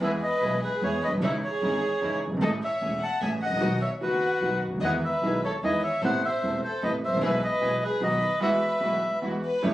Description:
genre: tango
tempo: 150 BPM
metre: 3/4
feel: rubato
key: E major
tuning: A4 = 441 Hz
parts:
  - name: bandoneon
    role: melody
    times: 0.0-9.2 s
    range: B4 to A5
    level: -27 LUFS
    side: equal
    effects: none
  - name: warm chamber violin section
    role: second line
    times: 0.0-9.7 s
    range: F#4 to F#5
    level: -31 LUFS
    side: equal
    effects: none
  - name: clear concert grand piano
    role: accompaniment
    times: 0.0-9.7 s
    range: E1 to G#4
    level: -30 LUFS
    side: right 1 dB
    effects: none
  - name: warm symphonic string section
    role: stabs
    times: 0.0-9.4 s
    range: G#3 to A4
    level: -35 LUFS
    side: equal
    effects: none
  - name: upright bass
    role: bass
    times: 0.0-9.7 s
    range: E1 to E2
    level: -34 LUFS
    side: equal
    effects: none
room: light reverb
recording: recorded on a phone in the room, studio ambience, compression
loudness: -24 LUFS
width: side -14 dB against mid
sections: 0.0-9.6 A section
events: none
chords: 0.0 E; 1.2 C#madd9; 2.4 Amaj7; 3.6 B; 4.8 Emaj7; 6.0 Amadd9; 7.2 E/B; 8.0 B; 8.4 Eadd9

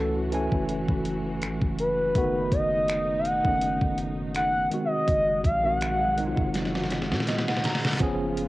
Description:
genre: contemporary R&B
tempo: 82 BPM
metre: 4/4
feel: swing 54% on 16ths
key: unclear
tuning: A4 = 438 Hz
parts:
  - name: gliding portamento lead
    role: melody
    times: 0.0-6.4 s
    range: A4 to F#5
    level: -26 LUFS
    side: equal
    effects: chorus, cassette tape, tape echo
  - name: tine electric piano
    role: accompaniment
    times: 0.0-8.5 s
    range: D3 to A#5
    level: -29 LUFS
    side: equal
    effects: overdrive, fast stereo tremolo, cassette tape
  - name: warm studio string section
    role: sustained chords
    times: 0.0-8.5 s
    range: B2 to F#4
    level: -37 LUFS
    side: left 1 dB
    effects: cassette tape
  - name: warm 808-style bass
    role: bass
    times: 0.0-8.5 s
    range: F#1 to A#2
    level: -34 LUFS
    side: equal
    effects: none
  - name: clean 12-bit digital drum machine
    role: drums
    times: 0.3-8.5 s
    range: finger snaps, hi-hat, kick drum, snare drum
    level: -28 LUFS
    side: equal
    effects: cassette tape
  - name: reverse cymbal and impact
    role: sound effects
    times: 7.0-8.5 s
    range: none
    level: -37 LUFS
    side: left 1 dB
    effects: none
room: light reverb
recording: home recording on cassette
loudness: -23 LUFS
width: side -18 dB against mid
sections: 0.0-8.0 A section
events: drum fill 6.5-8.0; tine electric piano fill 6.9-8.0; reverse cymbal 7.0-8.0; impact 8.0-8.5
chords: 0.0 F#m7; 2.2 B7/F#; 4.7 G#7/F#

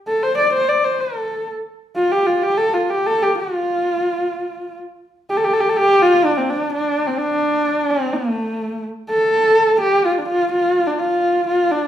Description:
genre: mongolian traditional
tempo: 126 BPM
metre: 4/4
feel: straight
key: F gong mode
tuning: A4 = 442 Hz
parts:
  - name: warm horsehead fiddle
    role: solo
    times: 0.1-11.9 s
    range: A3 to D5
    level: -16 LUFS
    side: equal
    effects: none
room: wet large studio reverb, RT60 1.0 s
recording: band playing live in one room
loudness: -16 LUFS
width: side -10 dB against mid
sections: 0.0-5.3 A section; 5.3-11.9 B section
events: none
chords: none

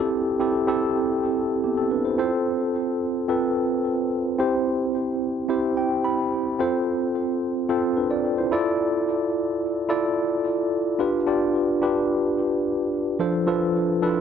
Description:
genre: pop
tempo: 109 BPM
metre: 4/4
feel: straight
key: G mixolydian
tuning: A4 = 438 Hz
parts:
  - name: tine electric piano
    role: solo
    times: 0.0-14.2 s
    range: F3 to B5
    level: -21 LUFS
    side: equal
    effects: medium stereo tremolo, digital delay
room: moderate lush hall reverb, RT60 2.3 s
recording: none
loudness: -21 LUFS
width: side -7 dB against mid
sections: 0.0-2.2 A section; 2.2-11.0 B section; 11.0-14.2 C section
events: tine electric piano fill 5.5-6.6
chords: 0.0 C6; 2.2 F; 4.4 C; 6.6 F/C; 8.5 Dmadd9; 11.0 G7; 13.2 Dm7/F

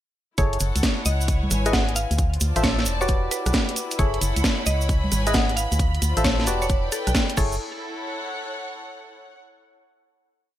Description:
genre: UK garage, two-step garage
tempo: 133 BPM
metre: 4/4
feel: swing 66% on 16ths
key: F# minor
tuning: A4 = 440 Hz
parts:
  - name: mallet-like synth pluck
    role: melody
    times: 0.4-7.6 s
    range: A4 to F#5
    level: -31 LUFS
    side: equal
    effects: chorus, digital delay
  - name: percussive organ stab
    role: stabs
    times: 0.4-7.6 s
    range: E4 to E5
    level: -29 LUFS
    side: left 1 dB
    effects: chorus, ping-pong delay
  - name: organ-like FM bass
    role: bass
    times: 0.4-7.6 s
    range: E1 to D2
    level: -24 LUFS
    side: equal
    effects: none
  - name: electronic kick drum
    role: drums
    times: 0.4-7.5 s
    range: none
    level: -24 LUFS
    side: equal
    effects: none
  - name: garage drum kit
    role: drums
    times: 0.4-7.5 s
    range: congas, crash cymbal, hi-hat, rim click, snare drum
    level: -25 LUFS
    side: right 1 dB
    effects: gated reverb
  - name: cabasa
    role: percussion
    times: 0.4-7.6 s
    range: none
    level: -32 LUFS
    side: right 3 dB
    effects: none
  - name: dark studio string section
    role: texture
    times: 0.4-9.4 s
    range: E4 to A5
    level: -32 LUFS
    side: left 2 dB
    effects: sidechain pumping
  - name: clear studio violin section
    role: sustained chords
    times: 4.0-7.4 s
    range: B5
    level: -35 LUFS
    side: equal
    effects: sidechain pumping
room: light reverb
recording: bright 1980s-style digital production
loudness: -20 LUFS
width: side -12 dB against mid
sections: 0.4-7.6 drop; 7.6-9.4 final chord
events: drop 0.4-7.6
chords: 0.4 F#m7; 1.1 C#m7; 2.2 Dm7; 2.9 Em7; 4.0 F#m7; 4.7 C#m7; 5.8 Dm7; 6.5 Em7; 7.4 F#m7

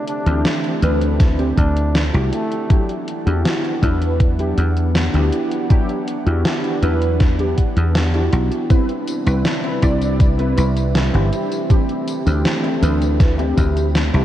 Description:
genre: vaporwave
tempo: 80 BPM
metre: 4/4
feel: straight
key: E minor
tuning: A4 = 441 Hz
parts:
  - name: breathy flugelhorn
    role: melody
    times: 0.0-2.9 s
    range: A3 to D4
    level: -29 LUFS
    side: equal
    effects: tape echo
  - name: warbly tape-like pad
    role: sustained chords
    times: 0.0-14.2 s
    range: C3 to F#5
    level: -27 LUFS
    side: equal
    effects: chorus, built-in reverb
  - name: gated 80s digital drum machine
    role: drums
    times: 0.1-14.2 s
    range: hi-hat, snare drum, tambourine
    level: -24 LUFS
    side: equal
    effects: gated reverb, gated reverb snare
  - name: warbly lo-fi synth keys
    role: accompaniment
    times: 0.3-14.2 s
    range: E3 to D5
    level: -22 LUFS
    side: equal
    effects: ensemble chorus, diffuse ambient delay
  - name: dry thumbed slap bass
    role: bass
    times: 0.3-14.2 s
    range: G1 to E2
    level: -17 LUFS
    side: equal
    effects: none
  - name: electronic kick drum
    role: drums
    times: 1.2-13.7 s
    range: none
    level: -15 LUFS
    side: equal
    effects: none
  - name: mellow electric guitar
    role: riff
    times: 9.6-14.2 s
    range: C4 to B4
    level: -26 LUFS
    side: left 2 dB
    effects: lush chorus, diffuse ambient delay
room: moderate cathedral reverb, RT60 5.1 s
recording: dreamy mix soaked in reverb, cassette tape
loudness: -15 LUFS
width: side -12 dB against mid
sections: 0.0-14.2 A section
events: none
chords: 0.0 D9sus4; 2.3 Em9; 8.7 Cmaj7; 11.3 D9sus4

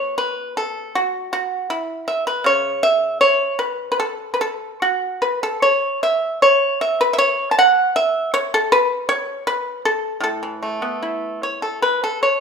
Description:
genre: chinese traditional, Chinese solo plucked strings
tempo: 73-82 BPM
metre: 2/4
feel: rubato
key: A gong mode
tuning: A4 = 437 Hz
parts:
  - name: pipa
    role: solo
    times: 0.0-12.4 s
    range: A2 to A5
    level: -17 LUFS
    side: equal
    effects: none
room: moderate recital hall reverb, RT60 1.4 s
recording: minimal, uncompressed stereo recording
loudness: -17 LUFS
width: side -6 dB against mid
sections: 0.0-11.8 A section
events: none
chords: none

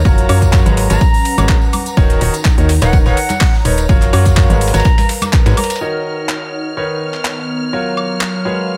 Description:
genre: piano house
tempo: 125 BPM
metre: 4/4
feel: swing 54% on 16ths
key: unclear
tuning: A4 = 440 Hz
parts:
  - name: warm symphonic violin section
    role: sustained chords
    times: 0.0-8.8 s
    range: A#5 to F6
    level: -30 LUFS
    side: equal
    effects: vintage 12-bit sampler grit, sidechain pumping
  - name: organ-like FM bass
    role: bass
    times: 0.0-5.5 s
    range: D#1 to Ab2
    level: -16 LUFS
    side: equal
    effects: sidechain pumping
  - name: warbly tape-like pad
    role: texture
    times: 0.0-8.8 s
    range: D#3 to A#5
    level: -26 LUFS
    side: equal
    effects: chorus, built-in reverb, sidechain pumping
  - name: clear concert grand piano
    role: riff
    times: 0.1-8.8 s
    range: D#3 to Eb5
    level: -22 LUFS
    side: equal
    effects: sidechain pumping, delay
  - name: dusty soul sampler-style drum kit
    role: drums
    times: 0.1-8.8 s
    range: hi-hat, ride cymbal, snare drum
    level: -31 LUFS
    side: equal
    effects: high-pass filter on snare, low-pass filter on snare, high-pass filter on hats, low-pass filter on hats, high-pass filter on cymbals, low-pass filter on cymbals, high-pass filter on room, low-pass filter on room
  - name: electronic kick drum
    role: drums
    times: 0.1-5.4 s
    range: none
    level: -14 LUFS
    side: equal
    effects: none
  - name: tambourine and congas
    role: percussion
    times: 0.1-5.8 s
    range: none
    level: -29 LUFS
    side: equal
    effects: none
  - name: garage drum kit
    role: drums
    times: 0.2-8.3 s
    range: handclaps, hi-hat, woodblock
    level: -24 LUFS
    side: equal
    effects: none
  - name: concert flute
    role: melody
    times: 0.9-5.8 s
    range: F#5 to Bb5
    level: -24 LUFS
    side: equal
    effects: delay
room: digital ambience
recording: none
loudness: -14 LUFS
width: mono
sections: 0.0-5.8 A section; 5.8-8.8 B section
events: none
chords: 0.1 Gbmaj7; 0.8 Abm11; 2.0 Bmaj9/D#; 3.9 Gbmaj7; 4.6 Abm11; 5.8 Ebm7; 6.8 Bmaj9/D#; 7.7 Gbmaj7

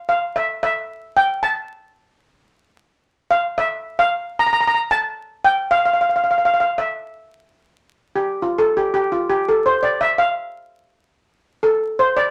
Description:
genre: calypso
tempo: 112 BPM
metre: 4/4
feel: straight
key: F major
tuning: A4 = 438 Hz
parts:
  - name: steel pan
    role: solo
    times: 0.0-12.3 s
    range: F4 to Bb5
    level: -19 LUFS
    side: equal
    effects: none
room: moderate studio reverb, RT60 0.6 s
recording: vinyl crackle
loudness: -19 LUFS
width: mono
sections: 0.0-7.9 A section; 7.9-12.3 B section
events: steel pan solo 7.9-12.3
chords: none

